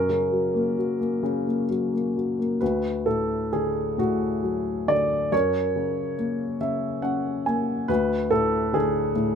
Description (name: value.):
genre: classical, lyrical solo piano.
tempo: 64-72 BPM.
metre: 3/4.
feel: rubato.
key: D lydian.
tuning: A4 = 440 Hz.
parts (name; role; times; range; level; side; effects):
dark baby grand piano; solo; 0.0-9.4 s; D2 to G#5; -22 LUFS; left 1 dB; none.
room: moderate small room reverb, RT60 0.6 s.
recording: none.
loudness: -22 LUFS.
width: side -7 dB against mid.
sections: 0.0-2.6 A section; 2.6-9.4 B section.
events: grand piano fill 6.2-7.9.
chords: 0.0 F#; 2.6 D; 5.3 F#; 7.9 D.